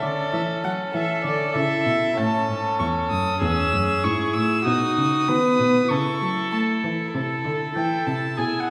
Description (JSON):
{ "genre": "quick classical-period movement for string quartet", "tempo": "97 BPM", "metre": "4/4", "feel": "straight", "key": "unclear", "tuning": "A4 = 442 Hz", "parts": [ { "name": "dark violin", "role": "melody", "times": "0.0-8.7 s", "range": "D5 to E6", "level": "-28 LUFS", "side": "equal", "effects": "none" }, { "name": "dark violin", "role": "second line", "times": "0.0-8.7 s", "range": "F#4 to B4", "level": "-28 LUFS", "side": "equal", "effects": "none" }, { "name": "dark viola", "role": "accompaniment", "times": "0.0-8.7 s", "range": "B3 to E4", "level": "-30 LUFS", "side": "equal", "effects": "none" }, { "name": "dark cello", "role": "bass", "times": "0.0-8.7 s", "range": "E2 to A3", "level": "-29 LUFS", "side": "equal", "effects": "none" } ], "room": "wet recital hall reverb, RT60 1.4 s", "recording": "recorded in a church or concert hall", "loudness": "-22 LUFS", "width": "mono", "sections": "0.0-8.7 A section", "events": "none", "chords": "0.0 A; 4.7 B; 5.9 A/C#; 7.1 C69" }